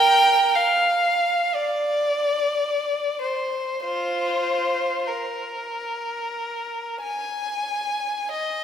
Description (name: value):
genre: classical, free, expressive piece for unaccompanied violin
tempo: 41-62 BPM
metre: 4/4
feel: rubato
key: F dorian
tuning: A4 = 440 Hz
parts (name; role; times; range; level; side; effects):
- rich violin; solo; 0.0-8.6 s; F4 to Ab5; -21 LUFS; equal; none
room: wet scoring stage reverb, RT60 2.1 s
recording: heard from further back in the room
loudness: -21 LUFS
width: side -8 dB against mid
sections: 0.0-8.6 A section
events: none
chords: none